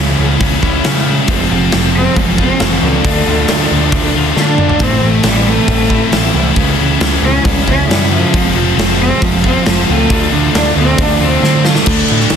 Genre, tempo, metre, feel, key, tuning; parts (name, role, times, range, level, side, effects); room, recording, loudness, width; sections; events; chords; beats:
quiet-loud alternative rock; 136 BPM; 4/4; straight; A4 = 444 Hz
rich cello; melody; 0.0-11.9 s; C#3 to D4; -17 LUFS; equal; analog delay
twelve-string electric guitar; arpeggios; 0.0-11.9 s; F2 to F4; -22 LUFS; left 4 dB; tremolo, analog delay
scooped high-gain guitar; riff; 0.0-12.4 s; A2 to F4; -17 LUFS; left 11 dB; distortion
thick fuzz guitar; riff; 0.0-12.4 s; A2 to F4; -17 LUFS; right 11 dB; distortion
growling picked electric bass; bass; 0.0-12.4 s; F1 to D3; -16 LUFS; equal; overdrive
big rock drum kit; drums; 0.4-12.4 s; crash cymbal, hi-hat, kick drum, snare drum, toms; -16 LUFS; equal; soft clipping on kick
light reverb, studio ambience; dense, heavily limited modern master; -10 LUFS; side -7 dB against mid
0.0-11.9 A section
cello solo 0.0-11.9; drum fill 4.4-4.8, 11.4-11.9
0.0 C#m; 1.3 Fm; 3.0 Dm; 4.8 Am; 6.6 C#m; 8.3 Fm; 10.1 Dm; 11.9 D5
0.41 0.85 | 1.29 1.73 2.17 2.61 | 3.05 3.49 3.93 4.37 | 4.81 5.25 5.69 6.13 | 6.57 7.01 7.45 7.89 | 8.33 8.77 9.21 9.66 | 10.10 10.54 10.98 11.42 | 11.86 12.30